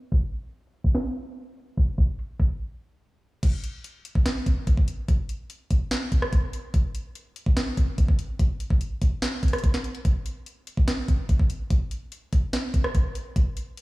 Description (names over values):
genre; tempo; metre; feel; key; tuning
hip hop; 145 BPM; 4/4; half-time; none; none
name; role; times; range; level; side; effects
trap drum kit; drums; 0.1-13.8 s; crash cymbal, hi-hat, kick drum, rim click, snare drum; -22 LUFS; equal; none
room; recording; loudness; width
light reverb; low-pass filter, small room reverb; -23 LUFS; side -21 dB against mid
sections
0.0-3.4 A section; 3.4-13.8 B section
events
filter sweep 0.0-3.4; break 2.6-3.4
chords
none